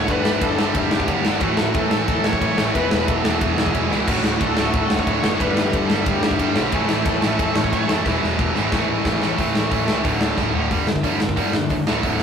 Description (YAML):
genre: punk rock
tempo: 181 BPM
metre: 4/4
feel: straight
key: unclear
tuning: A4 = 440 Hz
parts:
  - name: clear viola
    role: melody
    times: 0.0-9.0 s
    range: E4 to C#5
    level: -26 LUFS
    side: left 1 dB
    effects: none
  - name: cranked stack guitar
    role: riff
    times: 0.0-10.7 s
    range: D2 to A3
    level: -27 LUFS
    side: left 2 dB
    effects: overdrive
  - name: tight distorted guitar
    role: riff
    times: 0.0-12.2 s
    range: D2 to A4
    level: -27 LUFS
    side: left 8 dB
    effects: distortion
  - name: tight distorted guitar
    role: riff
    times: 0.0-12.2 s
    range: D2 to A3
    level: -23 LUFS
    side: right 6 dB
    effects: distortion
  - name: fuzz picked electric bass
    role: bass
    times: 0.0-12.2 s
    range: D1 to C#2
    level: -28 LUFS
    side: equal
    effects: overdrive
  - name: big rock drum kit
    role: drums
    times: 0.1-12.2 s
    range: crash cymbal, hi-hat, kick drum, ride cymbal, snare drum, toms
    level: -21 LUFS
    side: equal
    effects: none
room: light reverb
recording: rough rehearsal-room recording, warm saturation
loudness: -17 LUFS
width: side -7 dB against mid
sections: 0.0-9.4 A section; 9.4-10.7 B section; 10.7-12.2 C section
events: drum fill 3.9, 8.1-9.4, 10.4-10.7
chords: 0.1 G; 1.4 A; 2.7 E; 4.1 D; 5.4 G; 6.7 A; 8.1 E; 8.7 A; 10.0 D5; 10.7 G5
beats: | 0.08 0.42 0.75 1.08 | 1.42 1.75 2.08 2.41 | 2.75 3.08 3.41 3.74 | 4.08 4.41 4.74 5.07 | 5.41 5.74 6.07 6.40 | 6.73 7.06 7.40 7.73 | 8.06 8.39 8.72 9.05 | 9.38 9.72 10.05 10.38 | 10.71 11.04 11.38 11.71 | 12.04